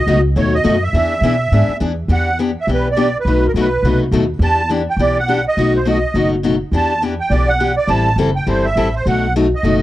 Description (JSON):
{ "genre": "acoustic string swing (jazz manouche)", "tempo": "207 BPM", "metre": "4/4", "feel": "swing 59% on 8ths", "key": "E minor", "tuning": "A4 = 440 Hz", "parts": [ { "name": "musette accordion", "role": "melody", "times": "0.0-9.8 s", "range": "A#4 to A5", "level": "-18 LUFS", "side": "right 3 dB", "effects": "none" }, { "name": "upright bass", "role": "bass", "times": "0.0-9.8 s", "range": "F#1 to B2", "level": "-18 LUFS", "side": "equal", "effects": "none" }, { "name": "picked steel-string acoustic guitar", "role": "accompaniment", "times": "0.1-9.8 s", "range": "B2 to A4", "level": "-17 LUFS", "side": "left 3 dB", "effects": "none" } ], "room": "little or no reverb", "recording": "dry, close 1970s-style studio recording", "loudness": "-13 LUFS", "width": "side -15 dB against mid", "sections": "0.0-2.1 A section; 2.1-9.8 B section", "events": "none", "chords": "0.0 B7; 0.9 E7; 2.1 Em7; 3.3 B7; 4.4 Em7; 5.6 B7; 6.7 Em7; 7.9 Am7; 9.1 B7" }